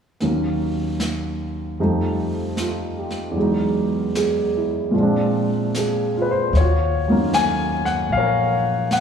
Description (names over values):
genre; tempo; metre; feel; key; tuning
jazz ballad; 76 BPM; 4/4; swing 68% on 8ths; unclear; A4 = 440 Hz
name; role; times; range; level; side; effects
warm baby grand piano; accompaniment; 0.2-9.0 s; Eb2 to Ab5; -19 LUFS; equal; none
jazz brush drum kit; drums; 0.2-9.0 s; brushed snare drum, hi-hat, snare drum; -31 LUFS; right 2 dB; none
upright bass; bass; 6.5-9.0 s; Bb1 to Eb2; -22 LUFS; left 1 dB; none
room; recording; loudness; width
moderate concert hall reverb, RT60 2.2 s; recorded in a church or concert hall, studio ambience; -18 LUFS; side -7 dB against mid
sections
0.2-6.5 A section; 6.5-9.0 B section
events
none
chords
0.2 Ebm7; 1.8 F9; 3.4 Emaj7; 4.9 Bb7; 6.5 Ebm9